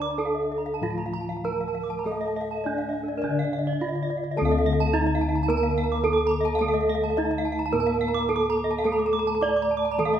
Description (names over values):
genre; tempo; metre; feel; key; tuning
Balinese gamelan; 106 BPM; 4/4; uneven beats; D pelog; A4 = 440 Hz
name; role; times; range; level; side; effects
gamelan-type bronze metallophone; melody; 0.0-10.2 s; D4 to D5; -25 LUFS; right 3 dB; none
mellow hollow bansuri; second line; 0.0-4.3 s; Bb4 to Eb5+36c; -38 LUFS; left 3 dB; none
gamelan-type bronze metallophone; accompaniment; 0.0-10.2 s; D3 to D4; -34 LUFS; left 3 dB; none
gamelan-type bronze metallophone; arpeggios; 0.0-10.1 s; A4 to D6; -32 LUFS; right 4 dB; none
gamelan-type bossed gongs; bass; 0.0-10.2 s; D2 to D5; -30 LUFS; left 3 dB; none
gamelan-type bronze metallophone; arpeggios; 0.1-10.2 s; D5 to D6; -32 LUFS; left 5 dB; none
room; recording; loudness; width
wet recital hall reverb, RT60 1.6 s; minimal, uncompressed stereo recording; -22 LUFS; side -9 dB against mid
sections
0.0-4.4 A section; 4.4-10.2 B section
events
none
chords
none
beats
0.18 0.82 1.44 | 2.05 2.65 3.24 3.81 | 4.38 4.94 5.50 6.05 | 6.61 7.17 7.73 8.29 | 8.85 9.41 9.99